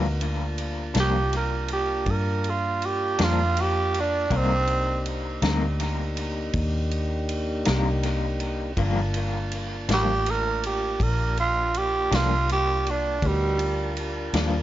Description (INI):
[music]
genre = slow blues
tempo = 54 BPM (dotted quarters)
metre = 12/8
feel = straight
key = G minor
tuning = A4 = 436 Hz
[part]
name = electric guitar through a small old amp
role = accompaniment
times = 0.0-14.6 s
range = G2 to Eb4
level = -32 LUFS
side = left 3 dB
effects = tremolo, dub echo
[part]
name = mellow tonewheel organ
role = sustained chords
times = 0.0-14.6 s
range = Bb3 to A5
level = -33 LUFS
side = left 1 dB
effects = slow rotary speaker
[part]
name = vintage muted fingered electric bass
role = bass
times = 0.0-14.6 s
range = G1 to G2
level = -27 LUFS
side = equal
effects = none
[part]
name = natural country drum kit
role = drums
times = 0.2-14.5 s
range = kick drum, ride cymbal, snare drum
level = -32 LUFS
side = equal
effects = dub echo
[part]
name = growling tenor saxophone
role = melody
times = 1.0-14.0 s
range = G3 to Bb4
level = -25 LUFS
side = right 3 dB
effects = dub echo
[sound]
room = light reverb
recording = echo-heavy mix, nothing above 7.5 kHz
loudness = -22 LUFS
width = side -13 dB against mid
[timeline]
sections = 0.0-14.6 A section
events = tenor saxophone solo 0.0-14.6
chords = 0.0 Gm7; 4.3 Cm7; 8.8 Gm7